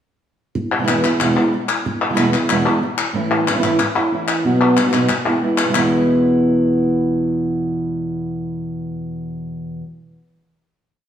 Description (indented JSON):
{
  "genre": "flamenco",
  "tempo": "185 BPM",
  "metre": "4/4",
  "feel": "straight",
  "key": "E major",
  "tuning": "A4 = 441 Hz",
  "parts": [
    { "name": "nylon-string guitar", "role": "accompaniment", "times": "0.6-9.8 s", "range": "E2 to F#4", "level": "-17 LUFS", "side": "right 1 dB", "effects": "none" },
    { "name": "palmas hand claps", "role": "percussion", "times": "0.7-5.8 s", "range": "none", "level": "-20 LUFS", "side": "left 4 dB", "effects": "none" }
  ],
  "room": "wet stone room reverb, RT60 1.3 s",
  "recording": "heard from further back in the room",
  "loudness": "-15 LUFS",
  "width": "side -9 dB against mid",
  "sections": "0.6-5.7 groove; 5.7-8.3 final chord",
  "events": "none",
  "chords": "0.6 E; 3.1 A; 4.4 B; 5.1 E"
}